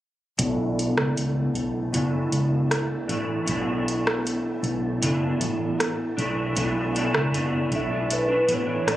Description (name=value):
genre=indie pop, bedroom pop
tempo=78 BPM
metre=4/4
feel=straight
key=B minor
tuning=A4 = 439 Hz
part: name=electric guitar through a small old amp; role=accompaniment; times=0.4-9.0 s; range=B2 to D4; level=-25 LUFS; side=equal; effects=ensemble chorus, vibrato effect, low-pass filter
part: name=vintage muted fingered electric bass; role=bass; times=0.4-9.0 s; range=F#1 to C#2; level=-28 LUFS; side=equal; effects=none
part: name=soft vintage rhythm box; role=drums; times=0.4-9.0 s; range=hi-hat, kick drum, rim click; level=-27 LUFS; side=equal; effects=none
part: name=hollow clarinet-like synth lead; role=melody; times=7.8-9.0 s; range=B4 to E5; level=-24 LUFS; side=equal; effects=lush chorus, digital delay
room=light reverb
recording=recorded on a phone in the room, club reverb, compression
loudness=-22 LUFS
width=side -14 dB against mid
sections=0.4-6.6 A section; 6.6-9.0 B section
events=filter sweep on clean electric guitar 0.4-6.6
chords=0.4 Bm11